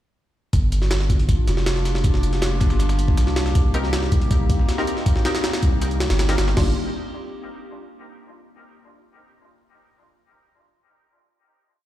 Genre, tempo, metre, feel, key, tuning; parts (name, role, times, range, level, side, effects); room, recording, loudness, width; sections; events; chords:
drum and bass, jungle; 159 BPM; 4/4; straight; G minor; A4 = 442 Hz
warbly tape-like pad; sustained chords; 1.0-6.7 s; Bb3 to G4; -29 LUFS; left 3 dB; chorus, built-in reverb
soft dub sub bass; bass; 0.5-6.7 s; F1 to C2; -21 LUFS; equal
dusty soul sampler-style drum kit; drums; 0.5-6.6 s; hi-hat, snare drum, tambourine; -37 LUFS; left 2 dB; overdrive, high-pass filter on perc, high-pass filter on snare, high-pass filter on hats, high-pass filter on room
jungle sampler-style drum kit; drums; 0.5-6.7 s; crash cymbal, hi-hat, kick drum, snare drum; -21 LUFS; equal
filtered dub chord stab; stabs; 3.7-6.7 s; G3 to Bb4; -29 LUFS; left 2 dB; lush chorus, dub echo
little or no reverb; played on a big sound system in a bare room, large studio reverb; -18 LUFS; side -13 dB against mid
0.5-6.6 drop; 6.6-8.1 final chord
drop 0.5-6.6
0.5 Gm7; 3.6 Cm7; 6.6 Gm7